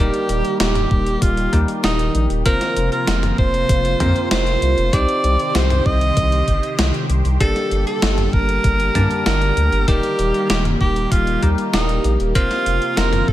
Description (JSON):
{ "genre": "synthwave", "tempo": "97 BPM", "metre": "4/4", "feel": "straight", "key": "unclear", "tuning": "A4 = 440 Hz", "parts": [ { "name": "breathy tenor saxophone", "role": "melody", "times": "0.0-13.3 s", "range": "Eb4 to Eb5", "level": "-21 LUFS", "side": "right 1 dB", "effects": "vintage 12-bit sampler grit, ping-pong delay" }, { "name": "phased analog pad", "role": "sustained chords", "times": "0.0-13.3 s", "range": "C3 to A5", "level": "-26 LUFS", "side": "right 2 dB", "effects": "phaser, chorus, sidechain pumping" }, { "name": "bell-like tine electric piano", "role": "stabs", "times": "0.0-13.3 s", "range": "G3 to A5", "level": "-24 LUFS", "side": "left 2 dB", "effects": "phaser" }, { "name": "round analog bass", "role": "bass", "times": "0.0-13.3 s", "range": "Eb1 to G2", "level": "-19 LUFS", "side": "equal", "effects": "none" }, { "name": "gated 80s digital drum machine", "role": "drums", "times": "0.1-13.2 s", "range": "hi-hat, snare drum, toms", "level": "-22 LUFS", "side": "equal", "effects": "gated reverb, gated reverb snare, overdrive" }, { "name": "electronic kick drum", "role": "drums", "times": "0.9-13.3 s", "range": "none", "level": "-19 LUFS", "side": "equal", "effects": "overdrive" } ], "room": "digital ambience", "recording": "none", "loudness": "-15 LUFS", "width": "side -14 dB against mid", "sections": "0.0-13.3 A section", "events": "none", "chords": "0.0 Eb; 2.5 Fsus4; 4.9 Cmadd9; 7.4 Gmadd9; 9.9 Eb; 12.4 Fsus4" }